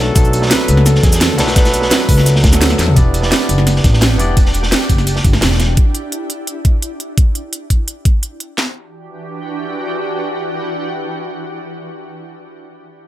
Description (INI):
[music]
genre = liquid drum and bass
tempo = 171 BPM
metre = 4/4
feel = straight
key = E minor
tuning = A4 = 440 Hz
[part]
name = clear flugelhorn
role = melody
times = 0.0-2.8 s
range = G#4 to B4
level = -23 LUFS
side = equal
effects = vintage 12-bit sampler grit, dub echo
[part]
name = barky tine electric piano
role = accompaniment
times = 0.0-4.4 s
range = F#3 to D5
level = -19 LUFS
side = equal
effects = auto-pan, low-pass filter, dub echo
[part]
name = upright bass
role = bass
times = 0.0-5.8 s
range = E1 to E2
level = -14 LUFS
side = equal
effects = none
[part]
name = crunchy breakbeat drum kit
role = drums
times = 0.2-5.7 s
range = hi-hat, snare drum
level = -20 LUFS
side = equal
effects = high-pass filter on hats, high-pass filter on snare, high-pass filter on room
[part]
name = drum and bass drum kit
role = drums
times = 0.2-8.7 s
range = handclaps, kick drum, snare drum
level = -12 LUFS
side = equal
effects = none
[part]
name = drum and bass drum kit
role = drums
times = 0.2-8.5 s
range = hi-hat, shaker, snare drum, toms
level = -17 LUFS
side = right 1 dB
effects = none
[part]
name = shimmering ambient pad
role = sustained chords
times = 3.7-12.1 s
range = E3 to F#5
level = -25 LUFS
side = right 1 dB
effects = chorus, built-in reverb, sidechain pumping
[sound]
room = little or no reverb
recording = none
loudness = -12 LUFS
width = side -14 dB against mid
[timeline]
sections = 0.0-3.0 A section; 3.0-8.6 B section; 8.6-11.4 C section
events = drop 0.0-3.0; drum fill 2.8; filter sweep on tine electric piano 3.0-4.4; filter sweep on ambient pad 3.0-7.2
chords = 0.0 Bm7; 3.0 Em7; 7.2 N.C.; 8.6 Em7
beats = | 0.16 0.51 0.86 1.21 | 1.56 1.91 2.26 2.61 | 2.96 3.31 3.67 4.02 | 4.37 4.72 5.07 5.42 | 5.77 6.12 6.47 6.82 | 7.17 7.53 7.88 8.23 | 8.58 8.93 9.28 9.63 | 9.98 10.33 10.68 11.04